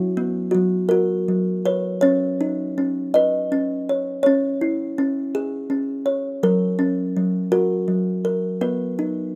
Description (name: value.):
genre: children's music, lullaby.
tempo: 54 BPM (dotted quarters).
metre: 6/8.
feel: straight.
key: B major.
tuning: A4 = 435 Hz.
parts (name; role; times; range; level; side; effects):
kalimba; solo; 0.0-9.4 s; F#3 to D#5; -22 LUFS; equal; none.
room: small room ambience.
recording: rough home demo mix.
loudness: -22 LUFS.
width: mono.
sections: 0.0-9.4 A section.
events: none.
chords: 0.0 B5/F#; 0.9 F#; 2.0 Badd9; 4.3 C#m; 6.4 F#; 8.6 B.